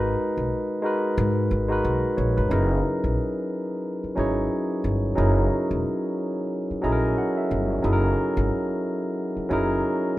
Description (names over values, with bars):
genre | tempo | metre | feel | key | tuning
R&B, neo-soul | 90 BPM | 4/4 | swing 59% on 16ths | unclear | A4 = 440 Hz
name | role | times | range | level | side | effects
barky tine electric piano | accompaniment | 0.0-10.2 s | F#3 to A#5 | -24 LUFS | equal | overdrive
upright bass | bass | 0.0-9.8 s | E1 to G#2 | -25 LUFS | equal | none
room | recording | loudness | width
light reverb, studio reverb | rough home demo mix | -22 LUFS | side -16 dB against mid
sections
0.0-2.5 A section; 2.5-10.2 B section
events
tine electric piano fill 6.5-7.8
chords
0.0 G#m7; 2.5 F#13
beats
0.49 1.16 1.82 | 2.49 3.16 3.82 4.49 | 5.16 5.82 6.49 7.16 | 7.82 8.49 9.16 9.82